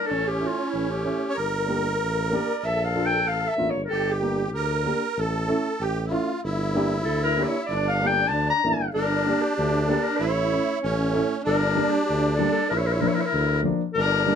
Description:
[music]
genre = klezmer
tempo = 95 BPM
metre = 2/4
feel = straight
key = G dorian sharp4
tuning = A4 = 442 Hz
[part]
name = warm clarinet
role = melody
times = 0.0-4.8, 7.0-14.4 s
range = E4 to Bb5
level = -25 LUFS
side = left 2 dB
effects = none
[part]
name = musette accordion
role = second line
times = 0.0-14.4 s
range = C#4 to C#5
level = -27 LUFS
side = right 2 dB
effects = none
[part]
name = mellow tuba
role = bass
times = 0.1-14.3 s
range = G1 to D2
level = -27 LUFS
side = equal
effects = none
[part]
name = dark upright piano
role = accompaniment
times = 0.4-14.4 s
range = F3 to G4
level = -27 LUFS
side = equal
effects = none
[sound]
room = light reverb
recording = close, detailed microphones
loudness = -22 LUFS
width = side -7 dB against mid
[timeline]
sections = 0.0-9.0 A section; 9.0-14.4 B section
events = clarinet solo 0.0-9.0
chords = 0.1 A; 1.4 Gm; 2.6 Bb; 3.9 Gm; 5.2 A; 6.4 Gm; 10.2 A; 11.5 Gm; 12.7 Bb

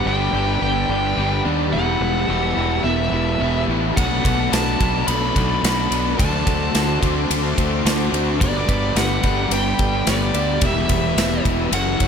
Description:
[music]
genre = rock, shoegaze and dream pop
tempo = 108 BPM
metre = 4/4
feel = straight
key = unclear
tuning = A4 = 440 Hz
[part]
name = bluesy overdriven lead guitar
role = melody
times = 0.0-12.1 s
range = D5 to B5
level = -24 LUFS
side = right 1 dB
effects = distortion, slapback echo
[part]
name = analog string pad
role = sustained chords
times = 0.0-12.1 s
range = G4 to E6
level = -31 LUFS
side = right 1 dB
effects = ensemble chorus
[part]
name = direct-recorded clean electric guitar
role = arpeggios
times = 0.0-12.1 s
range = E3 to F#4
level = -28 LUFS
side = right 11 dB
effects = lush chorus, slapback echo
[part]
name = cranked stack guitar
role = riff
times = 0.0-12.1 s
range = E2 to D4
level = -26 LUFS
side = right 1 dB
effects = overdrive
[part]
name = overdriven electric guitar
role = riff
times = 0.0-12.1 s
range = B2 to C5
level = -25 LUFS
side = left 13 dB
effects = lush chorus
[part]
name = twangy electric guitar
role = riff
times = 0.0-12.1 s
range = E2 to F#4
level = -37 LUFS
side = right 13 dB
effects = none
[part]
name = fuzz fingered electric bass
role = bass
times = 0.1-12.1 s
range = E1 to D#2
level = -23 LUFS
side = equal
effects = overdrive
[part]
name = big rock drum kit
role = drums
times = 4.0-12.1 s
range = kick drum, ride cymbal, snare drum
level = -22 LUFS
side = equal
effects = none
[sound]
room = light reverb, small room ambience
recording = none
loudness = -17 LUFS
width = side -7 dB against mid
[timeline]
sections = 0.0-12.1 A section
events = none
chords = 0.0 Gmaj7; 1.7 Emadd9; 4.0 Bm7; 6.2 D7; 8.4 Gmaj7; 10.6 Em

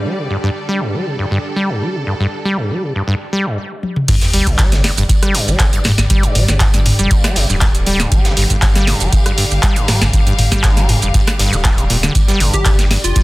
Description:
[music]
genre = acid house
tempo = 119 BPM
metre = 4/4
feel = straight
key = unclear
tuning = A4 = 440 Hz
[part]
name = clear studio string section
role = sustained chords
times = 0.0-13.2 s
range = D3 to F5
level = -25 LUFS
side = equal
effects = sidechain pumping
[part]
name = acid bass, saw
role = riff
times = 0.0-13.2 s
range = G2 to G3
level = -19 LUFS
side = equal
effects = overdrive, sidechain pumping, tape echo
[part]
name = ethereal airy pad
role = texture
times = 0.0-3.6 s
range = D4 to G5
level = -29 LUFS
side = right 2 dB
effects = ensemble chorus, built-in reverb, sidechain pumping
[part]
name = booming analog drum machine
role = drums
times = 3.8-13.2 s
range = crash cymbal, handclaps, hi-hat, rim click, shaker, snare drum, toms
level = -17 LUFS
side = equal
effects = none
[part]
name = saturated sub bass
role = bass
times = 4.1-13.1 s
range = D1 to G1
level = -18 LUFS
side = equal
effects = tube saturation, sidechain pumping
[part]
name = electronic kick drum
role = drums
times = 4.1-13.2 s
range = none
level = -14 LUFS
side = equal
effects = none
[part]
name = tight metal drum kit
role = drums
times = 4.1-13.2 s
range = hi-hat, snare drum, tambourine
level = -26 LUFS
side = equal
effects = sidechain pumping on hats, high-pass filter on hats, high-pass filter on snare, sidechain pumping on perc, high-pass filter on perc, high-pass filter on room
[part]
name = sub drop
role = sound effects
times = 4.1-6.1 s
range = none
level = -23 LUFS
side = equal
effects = none
[part]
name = plucky unison lead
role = melody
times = 12.5-13.2 s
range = F4 to G4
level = -20 LUFS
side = left 2 dB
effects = wide subtle chorus, tape echo
[sound]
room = studio reverb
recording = dense, heavily limited modern master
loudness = -12 LUFS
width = side -20 dB against mid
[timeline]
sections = 0.0-4.1 A section; 4.1-13.2 B section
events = stop 3.6-4.1; drum fill 3.8; drop 4.1-13.2; impact 4.1-6.1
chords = 0.0 G5

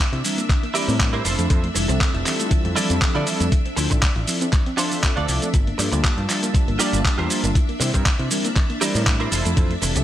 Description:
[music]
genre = nu-disco, nu disco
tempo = 119 BPM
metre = 4/4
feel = swing 54% on 16ths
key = G dorian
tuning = A4 = 440 Hz
[part]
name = string machine, full ensemble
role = sustained chords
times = 0.0-10.0 s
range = D4 to E5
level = -29 LUFS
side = left 1 dB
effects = ensemble chorus, sidechain pumping
[part]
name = soft round pluck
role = arpeggios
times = 0.0-10.0 s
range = E3 to F4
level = -32 LUFS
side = right 1 dB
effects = chorus, sidechain pumping, tape echo
[part]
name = direct-recorded clean electric guitar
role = riff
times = 0.0-10.0 s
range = D4 to D5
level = -26 LUFS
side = right 4 dB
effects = ensemble chorus, vintage 12-bit sampler grit
[part]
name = dusty soul sampler-style drum kit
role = drums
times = 0.0-10.0 s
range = handclaps, hi-hat, shaker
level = -24 LUFS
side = equal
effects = small room ambience
[part]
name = picked electric bass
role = bass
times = 0.1-10.0 s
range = F1 to D3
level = -24 LUFS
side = equal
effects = none
[part]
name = mellow synth brass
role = accompaniment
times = 0.2-10.0 s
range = F3 to A5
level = -27 LUFS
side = equal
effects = chorus, sidechain pumping, slapback echo
[part]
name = electronic kick drum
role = drums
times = 0.5-9.7 s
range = none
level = -19 LUFS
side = equal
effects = small room ambience
[sound]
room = light reverb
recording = none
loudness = -18 LUFS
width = side -12 dB against mid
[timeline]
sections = 0.0-10.0 A section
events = none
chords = 0.0 C7; 1.3 Fmaj7; 3.5 Dm7; 5.5 Gm7; 7.6 C7; 9.3 Fmaj7

